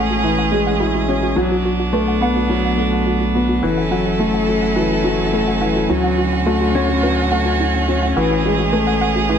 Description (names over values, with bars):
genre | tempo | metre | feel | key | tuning
electronica | 106 BPM | 4/4 | straight | F# minor | A4 = 435 Hz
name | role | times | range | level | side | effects
rich string quartet | sustained chords | 0.0-9.4 s | D3 to A4 | -21 LUFS | right 2 dB | none
warbly dusty pluck | arpeggios | 0.0-9.3 s | E4 to F#5 | -25 LUFS | right 3 dB | chorus, digital delay
dark upright piano | riff | 0.0-9.4 s | E3 to E4 | -18 LUFS | left 2 dB | digital delay
round analog bass | bass | 0.0-9.4 s | F#1 to D2 | -24 LUFS | right 1 dB | none
swell | sound effects | 9.3-9.4 s | none | barely audible | none | none
room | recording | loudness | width
moderate lush hall reverb, RT60 1.9 s, small room ambience | nothing above 10.7 kHz | -15 LUFS | side -8 dB against mid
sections
0.0-9.4 A section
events
none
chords
0.0 Amaj7; 1.4 Bm7; 3.6 F#m7; 5.9 Dmaj7; 8.2 Amaj7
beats
0.24 0.81 | 1.37 1.94 2.51 3.07 | 3.64 4.21 4.77 5.34 | 5.90 6.47 7.04 7.60 | 8.17 8.73 9.30